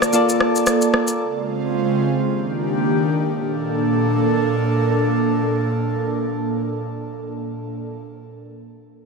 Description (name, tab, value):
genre	afrobeats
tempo	113 BPM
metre	4/4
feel	swing 55% on 16ths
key	Bb major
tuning	A4 = 440 Hz
part	soft electric-piano-like synth keys	accompaniment	0.0-1.2 s	Bb3 to D5	-18 LUFS	left 2 dB	chorus
part	airy breathy pad	sustained chords	0.0-8.0 s	Bb2 to D5	-20 LUFS	right 2 dB	chorus
part	electronic rim click and shaker	drums	0.0-1.2 s	none	-21 LUFS	left 1 dB	none
room	light reverb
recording	none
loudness	-18 LUFS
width	side -4 dB against mid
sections	0.0-3.3 A section; 3.3-7.6 B section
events	none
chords	0.0 Bbmaj7; 1.2 Dbmaj7; 2.3 Ebmaj7; 3.3 Bbmaj7